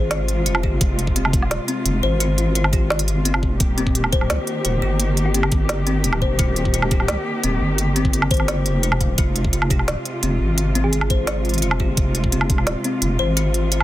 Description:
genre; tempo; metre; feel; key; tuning
half-time drum and bass; 172 BPM; 4/4; half-time; F minor; A4 = 440 Hz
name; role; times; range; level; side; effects
thumb-piano-like synth pluck; melody; 0.0-0.2, 5.3-5.7, 10.8-11.3 s; G4 to Ab4; -33 LUFS; equal; none
muted symphonic cello section; sustained chords; 0.0-13.8 s; C3 to G4; -26 LUFS; equal; sidechain pumping
kalimba; arpeggios; 0.0-13.8 s; C4 to F5; -26 LUFS; left 4 dB; digital delay
deep soft wobble bass; bass; 0.0-13.8 s; Eb1 to Db2; -21 LUFS; equal; chorus
organic electronic drum kit; drums; 0.1-13.8 s; hi-hat, snare drum, woodblock; -24 LUFS; right 2 dB; none
electronic kick drum; drums; 0.6-12.6 s; none; -20 LUFS; equal; overdrive
room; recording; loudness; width
little or no reverb; dense, heavily limited modern master; -17 LUFS; side -15 dB against mid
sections
0.0-13.8 A section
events
none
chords
0.0 Fm; 3.6 Eb; 9.2 Fm

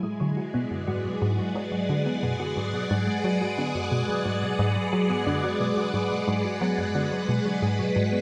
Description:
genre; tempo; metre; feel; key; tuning
ambient, sequencer-driven space music; 89 BPM; 4/4; straight; unclear; A4 = 441 Hz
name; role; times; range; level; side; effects
phased string machine; sustained chords; 0.0-8.2 s; G#3 to G#5; -30 LUFS; equal; ensemble chorus, phaser
thumb-piano-like synth pluck; arpeggios; 0.0-8.2 s; F#2 to F#4; -33 LUFS; equal; chorus, tape echo
tight sequenced synth; riff; 0.0-8.1 s; G#2 to F#3; -30 LUFS; equal; chorus, tape echo
room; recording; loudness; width
wet scoring stage reverb, RT60 1.9 s; none; -26 LUFS; mono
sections
0.0-8.2 A section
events
filter sweep on synth arpeggio sound 0.0-8.2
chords
0.0 G#m7b5

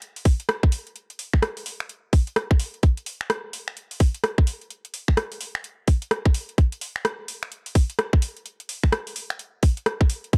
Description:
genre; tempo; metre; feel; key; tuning
UK garage; 128 BPM; 4/4; swing 62% on 16ths; none; none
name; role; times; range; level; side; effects
garage drum kit; drums; 0.0-10.4 s; finger snaps, hi-hat, rim click; -30 LUFS; equal; none
electronic kick drum; drums; 0.3-10.4 s; none; -20 LUFS; equal; none
room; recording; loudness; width
little or no reverb; dry, gritty hardware recording, transformer saturation; -24 LUFS; mono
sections
0.0-10.4 A section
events
none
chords
none

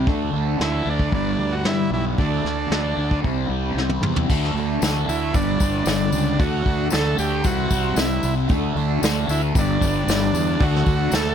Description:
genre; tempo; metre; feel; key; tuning
psychedelic rock; 114 BPM; 4/4; straight; D mixolydian; A4 = 440 Hz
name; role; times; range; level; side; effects
hand-pumped harmonium; sustained chords; 0.0-11.3 s; G3 to C6; -32 LUFS; right 8 dB; stereo widening
fuzz guitar; riff; 0.0-11.3 s; G2 to D4; -24 LUFS; left 2 dB; distortion, phaser
fuzz fingered electric bass; bass; 0.0-11.3 s; G1 to G2; -24 LUFS; equal; overdrive
vintage brush drum kit; drums; 0.1-11.2 s; crash cymbal, hi-hat, kick drum, snare drum, toms; -24 LUFS; equal; none
overdriven combo organ; melody; 0.6-11.3 s; D4 to A4; -26 LUFS; right 3 dB; analog delay
tambourine; percussion; 4.3-11.2 s; none; -35 LUFS; left 16 dB; none
room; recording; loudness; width
studio ambience; echo-heavy mix; -18 LUFS; side -8 dB against mid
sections
0.0-4.3 A section; 4.3-11.3 B section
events
drum fill 3.8-4.3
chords
0.1 D; 1.1 G; 2.2 D; 3.2 C; 4.3 D; 5.3 G; 6.4 D; 7.4 C; 8.5 D; 9.5 G; 10.6 D

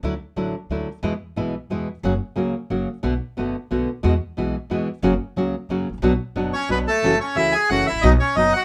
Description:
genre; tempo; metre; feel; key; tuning
tango; 180 BPM; 3/4; rubato; B dorian; A4 = 442 Hz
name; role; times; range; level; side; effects
nylon-string guitar; accompaniment; 0.0-8.5 s; B2 to F#4; -24 LUFS; equal; none
upright bass; bass; 0.0-8.5 s; F#1 to E2; -28 LUFS; equal; none
bandoneon; melody; 6.5-8.6 s; A3 to G#5; -21 LUFS; equal; none
room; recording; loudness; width
moderate studio ambience, RT60 0.5 s; none; -22 LUFS; mono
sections
0.0-7.0 A section; 7.0-8.6 B section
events
none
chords
0.0 Dadd9; 1.0 E; 2.0 F#; 3.0 Bm7; 4.0 Eadd9; 5.0 F#; 6.0 Bm; 7.0 F#m7; 8.0 B

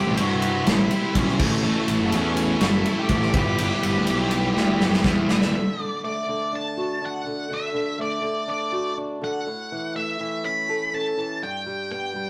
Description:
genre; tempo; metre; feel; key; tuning
quiet-loud alternative rock; 122 BPM; 4/4; straight; unclear; A4 = 440 Hz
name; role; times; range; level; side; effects
octave-fuzz lead guitar; melody; 0.0-12.3 s; A3 to B5; -30 LUFS; equal; distortion
mellow tonewheel organ; sustained chords; 0.0-5.5 s; G3 to C#6; -37 LUFS; equal; none
scooped high-gain guitar; riff; 0.0-5.5 s; C3 to B4; -32 LUFS; equal; distortion
thick fuzz guitar; riff; 0.0-5.5 s; C3 to B4; -29 LUFS; equal; distortion
fuzz picked electric bass; bass; 0.0-5.5 s; F#1 to G2; -28 LUFS; equal; overdrive
big rock drum kit; drums; 0.2-5.5 s; crash cymbal, kick drum, ride cymbal, snare drum; -26 LUFS; equal; none
fingerpicked acoustic archtop guitar; arpeggios; 5.5-12.3 s; G2 to A4; -30 LUFS; equal; none
room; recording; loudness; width
moderate stone room reverb, RT60 1.0 s; rough rehearsal-room recording, tube saturation; -23 LUFS; mono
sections
0.0-5.5 A section; 5.5-12.3 B section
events
drum fill 4.6-5.5; half time 5.5-12.3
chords
0.0 C; 1.4 A; 3.3 Em/G; 5.5 D; 9.5 A; 11.4 G

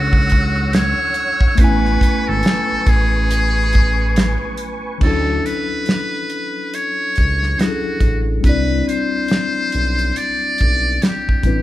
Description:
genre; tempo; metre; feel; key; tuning
R&B, neo-soul; 70 BPM; 4/4; swing 59% on 16ths; unclear; A4 = 440 Hz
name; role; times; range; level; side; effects
trumpet with metal mute; melody; 0.0-11.6 s; F#4 to D5; -20 LUFS; equal; none
mellow tine electric piano; accompaniment; 0.0-11.6 s; E3 to G#5; -23 LUFS; left 2 dB; fast stereo tremolo
tonewheel organ; sustained chords; 0.0-5.0 s; B4 to E6; -27 LUFS; equal; slow rotary speaker, overdrive, chorus vibrato
smooth gliding synth bass; bass; 0.0-11.6 s; G#1 to D2; -20 LUFS; equal; none
damped 70s drum kit; drums; 0.1-11.6 s; crash cymbal, hi-hat, kick drum, snare drum; -17 LUFS; equal; none
room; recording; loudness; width
moderate recital hall reverb, RT60 1.6 s; recorded in a church or concert hall; -15 LUFS; side -15 dB against mid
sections
0.0-5.0 A section; 5.0-11.6 B section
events
none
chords
0.0 Dmaj9; 1.6 Amaj9; 5.0 Dmaj9; 8.4 Cmaj9

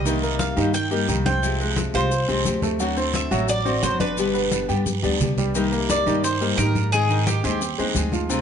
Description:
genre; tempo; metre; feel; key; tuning
latin, Cuban son and guajira; 175 BPM; 4/4; straight; C minor; A4 = 443 Hz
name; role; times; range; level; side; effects
Cuban tres; melody; 0.0-8.1 s; G4 to G5; -26 LUFS; equal; plate reverb
nylon-string guitar; accompaniment; 0.0-8.4 s; B2 to Ab4; -26 LUFS; left 5 dB; none
clear grand piano; arpeggios; 0.0-8.4 s; C3 to G5; -26 LUFS; right 3 dB; none
upright bass; bass; 0.0-8.4 s; G1 to Ab2; -26 LUFS; right 1 dB; none
congas; percussion; 0.1-8.4 s; none; -28 LUFS; left 2 dB; none
guiro; percussion; 0.1-8.4 s; none; -32 LUFS; right 8 dB; none
maracas; percussion; 0.1-8.4 s; none; -34 LUFS; left 7 dB; none
room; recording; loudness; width
light reverb; nothing above 10.7 kHz; -19 LUFS; side -8 dB against mid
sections
0.0-5.5 A section; 5.5-8.4 A section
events
drum fill 4.9-5.5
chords
0.1 Cm7; 1.4 Fmadd9/C; 2.8 D7; 4.2 G; 5.5 Cm7; 6.9 Ab

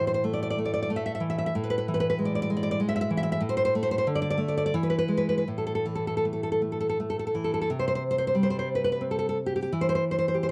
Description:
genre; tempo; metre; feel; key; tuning
romantic piece for solo classical guitar; 79-97 BPM; 3/4; rubato; A minor; A4 = 440 Hz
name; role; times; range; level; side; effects
nylon-string guitar; solo; 0.0-10.5 s; A2 to E5; -27 LUFS; equal; none
room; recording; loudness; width
light reverb; dark, warm production, tape saturation; -27 LUFS; mono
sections
0.0-7.7 A section; 7.7-10.5 B section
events
none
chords
0.0 A5; 1.5 E/A; 3.4 N.C.; 4.1 D5; 4.7 E; 5.5 A5; 7.7 C5; 9.7 Em

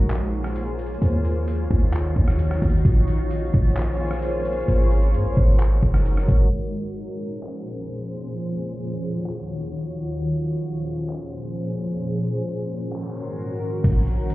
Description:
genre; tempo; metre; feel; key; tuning
hip hop, atmospheric cloud-rap; 131 BPM; 4/4; half-time; Bb minor; A4 = 439 Hz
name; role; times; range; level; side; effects
granular cloud pad; sustained chords; 0.0-14.3 s; Eb2 to Db5; -26 LUFS; equal; built-in reverb, sidechain pumping
warm 808-style bass; bass; 0.0-6.5, 13.8-14.3 s; Gb1 to Ab2; -21 LUFS; equal; none
trip hop sampler-style drum kit; drums; 0.1-14.3 s; crash cymbal, handclaps, hi-hat, kick drum, rim click; -22 LUFS; equal; none
room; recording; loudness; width
little or no reverb; heard muffled through a wall, club reverb, EQ, low-pass filter; -20 LUFS; side -18 dB against mid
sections
0.0-6.5 A section; 6.5-13.8 B section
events
filter sweep 6.5-13.8; kick muted 12.9-13.8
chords
0.0 Bbm9; 1.0 Ebm9; 2.9 Bbm9; 4.7 Ab7sus4; 6.5 Bbm9; 8.3 Ebm9; 10.2 Bbm9; 12.0 Ab7sus4; 13.8 Bbm9

